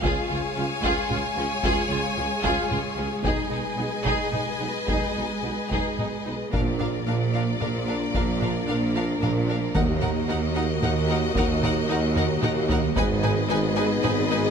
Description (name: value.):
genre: cinematic, epic orchestral film score.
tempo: 112 BPM.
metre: 3/4.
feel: straight.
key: unclear.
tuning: A4 = 440 Hz.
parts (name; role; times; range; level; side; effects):
rich chamber violin section; melody; 0.0-14.4 s; F5 to Ab5; -32 LUFS; left 3 dB; none.
rich symphonic violin section; second line; 0.0-14.4 s; Cb4 to Cb5; -32 LUFS; left 1 dB; none.
warm symphonic viola section; accompaniment; 0.0-14.4 s; D4 to F4; -33 LUFS; right 2 dB; none.
mellow French horn section; sustained chords; 0.0-14.5 s; Ab3 to Gb4; -32 LUFS; left 4 dB; none.
warm symphonic string section; sustained chords; 0.0-14.5 s; Ab3 to F5; -29 LUFS; left 1 dB; none.
dark chamber cello section; bass; 0.0-14.5 s; Db2 to Cb3; -32 LUFS; right 2 dB; none.
warm symphonic double bass section; bass; 0.0-14.5 s; Ab1 to Eb2; -32 LUFS; right 3 dB; none.
warm tuba; bass; 0.0-14.5 s; Ab1 to Eb2; -30 LUFS; right 4 dB; none.
solo taiko drums; drums; 0.0-14.3 s; none; -30 LUFS; left 1 dB; none.
timpani; percussion; 6.5-7.3, 9.7-10.5 s; Bb2 to Eb3; -32 LUFS; left 1 dB; none.
room: moderate scoring stage reverb, RT60 1.6 s.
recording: none.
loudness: -22 LUFS.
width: side -6 dB against mid.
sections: 0.0-6.5 A section; 6.5-14.5 B section.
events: drum fill 12.2-13.0.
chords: 0.0 Db; 3.2 Abm/Cb; 6.5 Bb; 9.8 Ebm; 13.0 Abm.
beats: | 0.03 0.56 1.10 | 1.63 2.17 2.71 | 3.24 3.78 4.33 | 4.88 5.43 5.98 | 6.53 7.07 7.61 | 8.15 8.68 9.22 | 9.76 10.29 10.83 | 11.36 11.90 12.43 | 12.96 13.50 14.04.